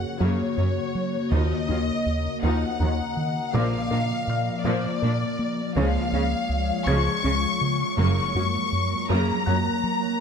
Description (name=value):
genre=cinematic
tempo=54 BPM (dotted quarters)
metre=6/8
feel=straight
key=unclear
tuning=A4 = 441 Hz
part: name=warm symphonic violin section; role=melody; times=0.0-10.2 s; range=Db5 to Db6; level=-28 LUFS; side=left 5 dB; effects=none
part: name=glassy FM pad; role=sustained chords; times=0.0-10.2 s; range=Db3 to Eb5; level=-28 LUFS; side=left 2 dB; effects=ensemble chorus, built-in reverb
part: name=round analog bass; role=riff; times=0.0-10.1 s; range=Db2 to Bb3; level=-27 LUFS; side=right 1 dB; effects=none
part: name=felt-muted upright piano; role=texture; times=0.0-10.2 s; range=D5 to Ab6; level=-38 LUFS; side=left 3 dB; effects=ping-pong delay
part: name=rich symphonic viola section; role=accompaniment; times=0.2-9.6 s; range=Db3 to F4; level=-31 LUFS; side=right 1 dB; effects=none
part: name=tight sequenced synth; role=arpeggios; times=0.2-9.7 s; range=Db3 to Bb4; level=-34 LUFS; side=equal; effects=none
part: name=rich symphonic cello section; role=bass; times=0.2-9.6 s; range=Eb2 to Db3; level=-28 LUFS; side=right 2 dB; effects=none
part: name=clear symphonic double bass section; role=bass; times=1.3-8.3 s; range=Gb1 to Eb2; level=-30 LUFS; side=right 2 dB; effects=none
room=moderate scoring stage reverb, RT60 1.5 s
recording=close, detailed microphones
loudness=-22 LUFS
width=side -6 dB against mid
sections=0.0-10.2 A section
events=none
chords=0.0 Gb; 1.3 Ebmadd9; 3.5 Bb; 5.8 Db; 8.0 Gb